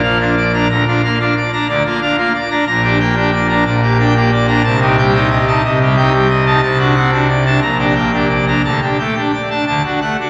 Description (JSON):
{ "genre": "classical, organ toccata", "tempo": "121 BPM", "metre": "4/4", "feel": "straight", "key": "G minor", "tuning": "A4 = 440 Hz", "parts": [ { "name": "pipe organ, full organ", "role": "solo", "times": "0.0-10.3 s", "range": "Bb1 to Bb5", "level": "-14 LUFS", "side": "equal", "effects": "none" } ], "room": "wet cathedral reverb, RT60 5.4 s", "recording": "none", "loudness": "-14 LUFS", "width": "mono", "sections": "0.0-10.3 A section", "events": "none", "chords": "0.0 Bb; 0.7 Bb/D; 2.7 Gm/Bb; 4.6 Am7b5/C; 6.6 D7/C; 7.6 Gm/Bb; 8.6 Dsus4; 9.7 D" }